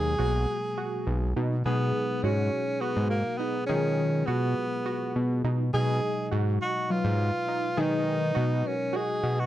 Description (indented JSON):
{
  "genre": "progressive instrumental, progressive",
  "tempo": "206 BPM (eighths)",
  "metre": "7/8",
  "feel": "straight",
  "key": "B lydian",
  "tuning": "A4 = 441 Hz",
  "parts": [
    { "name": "breathy tenor saxophone", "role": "melody", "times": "0.0-9.5 s", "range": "A#3 to G#4", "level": "-29 LUFS", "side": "equal", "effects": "none" },
    { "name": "barky tine electric piano", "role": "accompaniment", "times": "0.0-9.5 s", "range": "B2 to E#4", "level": "-35 LUFS", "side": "left 1 dB", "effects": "medium stereo tremolo" },
    { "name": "fat analog bass", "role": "bass", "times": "0.0-9.5 s", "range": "B1 to D#3", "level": "-26 LUFS", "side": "equal", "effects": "none" },
    { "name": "tight sequenced synth", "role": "arpeggios", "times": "0.2-9.3 s", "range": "F#3 to G#4", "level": "-35 LUFS", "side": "right 3 dB", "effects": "chorus, slapback echo" },
    { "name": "vibraphone with soft mallets", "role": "second line", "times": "1.7-9.5 s", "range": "F#4 to D#5", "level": "-36 LUFS", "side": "left 1 dB", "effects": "none" }
  ],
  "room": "little or no reverb",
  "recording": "dry, close 1970s-style studio recording",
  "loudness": "-25 LUFS",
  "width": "side -13 dB against mid",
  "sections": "0.0-1.7 A section; 1.7-9.5 B section",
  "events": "none",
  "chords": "0.0 B6",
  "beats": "0.19 0.49 0.78 1.07 1.36 | 1.65 1.94 2.23 2.53 2.82 3.11 3.40 | 3.69 3.98 4.28 4.57 4.86 5.15 5.44 | 5.74 6.03 6.32 6.61 6.90 7.19 7.48 | 7.78 8.07 8.36 8.65 8.94 9.23"
}